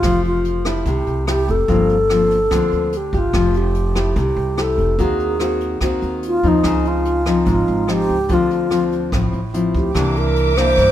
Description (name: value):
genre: bossa nova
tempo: 145 BPM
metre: 4/4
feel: straight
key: F major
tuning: A4 = 440 Hz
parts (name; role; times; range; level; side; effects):
- wooden-headed alto flute; melody; 0.0-10.9 s; Eb4 to C5; -19 LUFS; equal; none
- nylon-string guitar; accompaniment; 0.0-10.9 s; G2 to G4; -20 LUFS; left 2 dB; none
- upright bass; bass; 0.0-10.9 s; F1 to G2; -22 LUFS; right 1 dB; none
- jazz brush drum kit; drums; 0.0-10.9 s; hi-hat, kick drum, rim click; -25 LUFS; equal; none
- warm studio violin section; sustained chords; 10.0-10.9 s; Bb4 to D6; -24 LUFS; equal; none
room: light reverb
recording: minimal, uncompressed stereo recording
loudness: -15 LUFS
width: side -12 dB against mid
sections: 0.0-10.9 A section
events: none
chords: 0.0 Fmaj9; 1.7 Gm11; 3.3 Fmaj9; 5.0 Ab9/Eb; 6.6 Dbmaj9; 8.3 Dm9; 10.0 C9